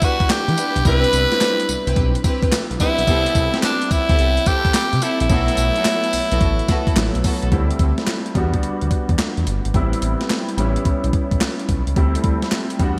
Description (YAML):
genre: R&B, new jack swing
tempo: 108 BPM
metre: 4/4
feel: swing 67% on 16ths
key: unclear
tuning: A4 = 440 Hz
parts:
  - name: growling tenor saxophone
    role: melody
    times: 0.0-7.2 s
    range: D4 to B4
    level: -22 LUFS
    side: equal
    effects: none
  - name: warm concert grand piano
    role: accompaniment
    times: 0.0-13.0 s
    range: F#3 to F#5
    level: -27 LUFS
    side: equal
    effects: ensemble chorus
  - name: warm studio string section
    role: stabs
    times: 0.0-7.4 s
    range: B3 to B4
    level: -29 LUFS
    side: equal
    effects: digital delay
  - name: crisp 8-bit digital drum machine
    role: drums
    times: 0.0-13.0 s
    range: handclaps, hi-hat, kick drum, snare drum, tambourine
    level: -23 LUFS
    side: equal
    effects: gated reverb
  - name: smooth gliding synth bass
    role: bass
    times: 0.5-13.0 s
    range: G1 to E3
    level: -24 LUFS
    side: equal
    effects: none
room: moderate plate reverb, RT60 1.5 s, small room ambience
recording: bright 1980s-style digital production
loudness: -19 LUFS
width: mono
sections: 0.0-7.5 A section; 7.5-13.0 B section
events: none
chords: 0.0 Em7; 0.9 Cmaj7; 3.1 Am7/C; 5.3 B7sus4; 7.5 D9sus4; 8.4 Em9; 9.7 Am9; 10.6 A9; 12.0 D9sus4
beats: 0.30 | 0.85 1.41 1.96 2.52 | 3.07 3.63 4.18 4.74 | 5.30 5.85 6.41 6.96 | 7.52 8.07 8.63 9.19 | 9.74 10.30 10.85 11.41 | 11.96 12.52